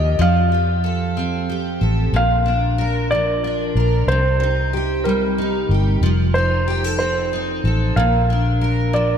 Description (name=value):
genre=pop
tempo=62 BPM (dotted quarters)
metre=6/8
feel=straight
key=Bb major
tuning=A4 = 439 Hz
part: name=warm grand piano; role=melody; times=0.0-9.2 s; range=Bb4 to F5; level=-22 LUFS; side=right 1 dB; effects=ping-pong delay
part: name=picked steel-string acoustic guitar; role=accompaniment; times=0.0-9.2 s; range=Bb2 to Bb4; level=-21 LUFS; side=equal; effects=double-tracked left and right
part: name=vintage muted fingered electric bass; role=bass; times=0.0-9.2 s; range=F1 to F2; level=-20 LUFS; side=equal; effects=none
room=moderate lush hall reverb, RT60 2.6 s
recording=dreamy mix soaked in reverb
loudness=-16 LUFS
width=side -8 dB against mid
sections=0.0-9.2 A section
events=none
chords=0.2 Fadd9; 2.1 Bb; 4.1 Cm; 6.0 F7; 8.0 Bb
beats=| 0.20 1.17 | 2.14 3.11 | 4.08 5.05 | 6.02 6.99 | 7.97 8.94